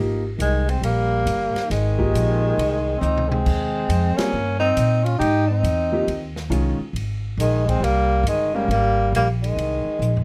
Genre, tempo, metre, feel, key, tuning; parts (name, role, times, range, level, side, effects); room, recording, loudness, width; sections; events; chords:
modal jazz; 137 BPM; 4/4; swing 66% on 8ths; Ab major; A4 = 440 Hz
clear upright piano; accompaniment; 0.0-8.7 s; Eb3 to Bb4; -27 LUFS; equal
upright bass; bass; 0.0-10.2 s; G1 to Bb2; -24 LUFS; equal
mellow tenor saxophone; melody; 0.4-10.2 s; Ab3 to G4; -25 LUFS; equal
bright trombone; second line; 0.4-10.2 s; Eb3 to Eb4; -29 LUFS; equal
swinging big-band drum kit; drums; 0.4-10.2 s; crash cymbal, hi-hat, kick drum, ride cymbal, snare drum, toms; -34 LUFS; equal
light reverb; dark, warm production; -21 LUFS; mono
0.0-10.2 A section
drum fill 3.0-3.5, 10.0; band accent 4.1
0.0 Abmaj9